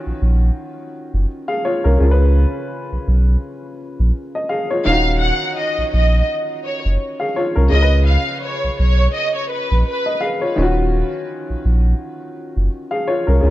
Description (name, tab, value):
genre	hip hop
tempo	84 BPM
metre	4/4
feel	swing 57% on 16ths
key	Eb minor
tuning	A4 = 440 Hz
part	warm upright piano	accompaniment	0.0-13.5 s	Db3 to F5	-22 LUFS	left 1 dB	cassette tape, high-pass filter, low-pass filter
part	warm sub bass	bass	0.1-13.5 s	Eb1 to Db2	-14 LUFS	equal	none
part	warm studio violin section	melody	4.9-10.2 s	Cb5 to Gb5	-21 LUFS	right 1 dB	high-pass filter, low-pass filter, ping-pong delay
room	light reverb, studio reverb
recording	dark, warm production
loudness	-15 LUFS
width	side -15 dB against mid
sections	0.0-13.5 A section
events	none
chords	0.0 Ebm9; 2.0 Db7; 4.9 Ebm7; 7.7 Db7; 10.6 Ebm9